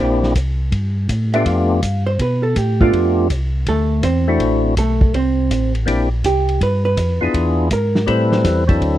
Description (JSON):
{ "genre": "soul jazz organ trio", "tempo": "163 BPM", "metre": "4/4", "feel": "swing 66% on 8ths", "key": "G mixolydian", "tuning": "A4 = 442 Hz", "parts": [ { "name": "percussive tonewheel organ", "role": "melody", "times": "0.0-9.0 s", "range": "F#3 to B4", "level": "-18 LUFS", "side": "left 3 dB", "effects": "slow rotary speaker, overdrive" }, { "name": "vintage hollow-body jazz guitar", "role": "accompaniment", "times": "0.0-8.7 s", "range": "A3 to F5", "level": "-20 LUFS", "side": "right 4 dB", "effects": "none" }, { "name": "mellow tonewheel organ", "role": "bass", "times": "0.0-9.0 s", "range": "A1 to B2", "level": "-18 LUFS", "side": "equal", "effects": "slow rotary speaker" }, { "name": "vintage drum kit", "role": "drums", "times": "0.2-8.9 s", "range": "hi-hat, kick drum, ride cymbal, snare drum", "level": "-20 LUFS", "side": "equal", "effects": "none" } ], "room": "little or no reverb", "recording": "dry, close 1970s-style studio recording", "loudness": "-14 LUFS", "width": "side -13 dB against mid", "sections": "0.0-9.0 A section", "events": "hollow-body jazz guitar solo 0.0-9.0", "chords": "0.0 C9; 0.7 G9; 3.7 D9; 5.1 C9; 6.6 G7; 7.3 E7b9; 8.1 Am7", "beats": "0.36 | 0.73 1.09 1.46 1.83 | 2.20 2.56 2.93 3.30 | 3.67 4.04 4.40 4.77 | 5.14 5.51 5.88 6.24 | 6.61 6.98 7.35 7.72 | 8.09 8.45 8.82" }